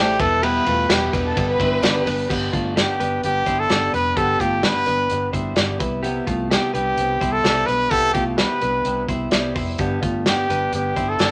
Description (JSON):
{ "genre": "jangly indie pop", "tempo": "128 BPM", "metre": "4/4", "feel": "straight", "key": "unclear", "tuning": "A4 = 438 Hz", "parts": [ { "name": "brilliant trumpet", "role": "melody", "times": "0.0-11.3 s", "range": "G4 to B4", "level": "-22 LUFS", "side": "equal", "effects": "none" }, { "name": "fingerpicked steel-string acoustic guitar", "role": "accompaniment", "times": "0.0-11.3 s", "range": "G2 to E4", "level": "-29 LUFS", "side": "equal", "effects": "none" }, { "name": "direct-recorded clean electric guitar", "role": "arpeggios", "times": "0.0-11.3 s", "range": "A3 to D5", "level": "-28 LUFS", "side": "equal", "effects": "none" }, { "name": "vintage muted fingered electric bass", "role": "bass", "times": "0.0-11.3 s", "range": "E1 to C2", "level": "-31 LUFS", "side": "equal", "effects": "none" }, { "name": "vintage drum kit", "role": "drums", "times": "0.2-11.3 s", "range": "crash cymbal, hi-hat, kick drum, ride cymbal, snare drum", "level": "-25 LUFS", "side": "equal", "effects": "none" }, { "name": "tambourine", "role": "percussion", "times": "0.2-2.2, 9.8-11.3 s", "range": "none", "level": "-46 LUFS", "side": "equal", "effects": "none" }, { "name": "warm studio violin section", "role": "second line", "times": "0.9-2.3 s", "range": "G4 to B4", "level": "-26 LUFS", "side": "equal", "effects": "none" } ], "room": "moderate studio reverb, RT60 0.8 s", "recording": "none", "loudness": "-20 LUFS", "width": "mono", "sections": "0.0-2.3 A section; 2.3-11.3 B section", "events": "none", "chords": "0.2 Em; 1.4 G; 2.3 Cmaj7" }